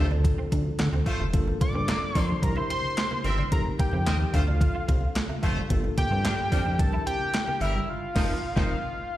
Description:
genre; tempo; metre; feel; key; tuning
early-eighties boogie funk; 110 BPM; 4/4; straight; G minor; A4 = 441 Hz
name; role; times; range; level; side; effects
warm horn section; second line; 0.0-8.7 s; F3 to E5; -35 LUFS; left 1 dB; slapback echo
mellow tine electric piano; accompaniment; 0.0-8.8 s; Bb3 to Bb4; -36 LUFS; left 3 dB; medium stereo tremolo, slapback echo
clean electric guitar; riff; 0.0-7.8 s; G3 to F4; -39 LUFS; right 7 dB; ensemble chorus, slapback echo
chorused synth bass; bass; 0.0-8.8 s; F1 to D3; -26 LUFS; equal; none
congas; percussion; 0.1-7.9 s; none; -36 LUFS; left 1 dB; none
crisp 8-bit digital drum machine; drums; 0.2-8.7 s; crash cymbal, handclaps, hi-hat, kick drum, snare drum; -26 LUFS; equal; overdrive
fat analog lead; melody; 1.6-9.2 s; E5 to D6; -30 LUFS; equal; chorus, slapback echo
room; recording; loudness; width
little or no reverb; live gig heard through the venue's PA, recital hall reverb; -23 LUFS; side -14 dB against mid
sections
0.0-9.2 A section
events
band accent 7.9-9.2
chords
0.0 Dm7; 1.3 Gm9; 2.4 C7; 3.5 F7sus4; 4.3 Dm7; 5.7 Gm9; 6.8 C7; 7.9 F7sus4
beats
0.25 0.79 | 1.34 1.88 2.43 2.97 | 3.52 4.06 4.61 5.16 | 5.70 6.25 6.79 7.34 | 7.88 8.43 8.97

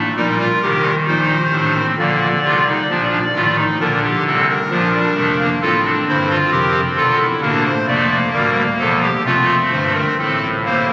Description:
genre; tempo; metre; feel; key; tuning
classical, baroque-style 4-part fugue for pipe organ; 66 BPM; 4/4; straight; Bb major; A4 = 440 Hz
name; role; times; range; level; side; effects
pipe organ, clarinet reed; solo; 0.0-10.9 s; D1 to D5; -13 LUFS; equal; none
room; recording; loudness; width
wet cathedral reverb, RT60 5.7 s; recorded on a phone in the room, club reverb, compression, nothing above 7.8 kHz; -13 LUFS; side -19 dB against mid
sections
0.0-10.9 A section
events
none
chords
0.0 Bb; 5.6 F; 7.5 Bb/D; 9.3 F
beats
0.16 1.08 | 1.99 2.91 3.82 4.73 | 5.63 6.54 7.45 8.36 | 9.27 10.20

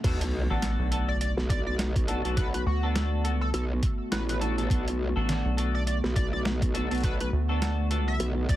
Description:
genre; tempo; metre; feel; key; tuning
glitch hop; 103 BPM; 4/4; swing 58% on 16ths; B minor pentatonic; A4 = 440 Hz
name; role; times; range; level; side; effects
warbly tape-like pad; sustained chords; 0.0-8.6 s; D3 to F#4; -35 LUFS; left 1 dB; chorus, built-in reverb, vintage 12-bit sampler grit, sidechain pumping
clean electric guitar; stabs; 0.0-8.1 s; B3 to A4; -34 LUFS; left 1 dB; analog chorus, sidechain pumping, tape echo
growl bass; bass; 0.0-8.5 s; A1 to B1; -29 LUFS; equal; chorus, high-pass filter
boom bap sampler-style drum kit; drums; 0.0-8.6 s; crash cymbal, hi-hat, snare drum; -34 LUFS; equal; overdrive
electronic kick drum; drums; 0.0-8.6 s; none; -27 LUFS; equal; overdrive, high-pass filter on kick, high-pass filter on room
sub drop; sound effects; 0.0-2.4 s; none; -35 LUFS; right 1 dB; none
rubbery square bass; bass; 0.5-8.6 s; A1 to D2; -27 LUFS; equal; none
sync lead; melody; 1.1-8.6 s; F#4 to E5; -36 LUFS; equal; analog chorus, tape echo
room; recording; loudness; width
light reverb; heavily compressed radio sound, high-pass filter; -25 LUFS; side -14 dB against mid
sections
0.0-8.6 A section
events
drop 0.0-8.6; impact 0.0-2.4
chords
0.0 Bm7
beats
| 0.04 0.63 1.21 1.79 | 2.37 2.96 3.54 4.12 | 4.70 5.29 5.87 6.45 | 7.03 7.62 8.20

